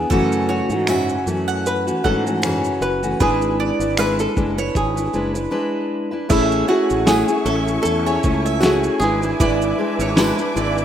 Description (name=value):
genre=acoustic pop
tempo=78 BPM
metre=4/4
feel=swing 55% on 16ths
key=A major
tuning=A4 = 440 Hz
part: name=fingerpicked steel-string acoustic guitar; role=accompaniment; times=0.0-10.8 s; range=F#2 to B4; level=-20 LUFS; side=left 2 dB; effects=none
part: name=fretless electric bass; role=bass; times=0.0-10.8 s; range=F#1 to G#2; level=-25 LUFS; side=right 1 dB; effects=lush chorus
part: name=bowl-back mandolin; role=arpeggios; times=0.1-10.8 s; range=A4 to F#5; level=-26 LUFS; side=right 8 dB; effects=none
part: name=dusty soul sampler-style drum kit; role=drums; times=0.1-10.8 s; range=crash cymbal, finger snaps, kick drum, shaker, snare drum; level=-23 LUFS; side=right 1 dB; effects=overdrive
part: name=archtop guitar, miked and amplified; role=melody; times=0.5-10.1 s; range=E4 to B4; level=-23 LUFS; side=right 1 dB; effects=digital delay
part: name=tambourine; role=percussion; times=0.9-10.4 s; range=none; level=-38 LUFS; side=left 2 dB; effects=none
part: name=rich studio string section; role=sustained chords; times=6.3-10.8 s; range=A3 to D6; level=-27 LUFS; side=right 1 dB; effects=none
room=moderate lush hall reverb, RT60 2.3 s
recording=rough home demo mix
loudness=-16 LUFS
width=side -9 dB against mid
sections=0.0-6.3 A section; 6.3-10.8 B section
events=break 5.5-6.3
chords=0.1 F#m7; 3.2 E7; 6.3 Amaj7; 9.0 E7/G#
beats=| 0.11 0.88 1.66 2.43 | 3.21 3.98 4.76 5.53 | 6.30 7.08 7.85 8.62 | 9.40 10.17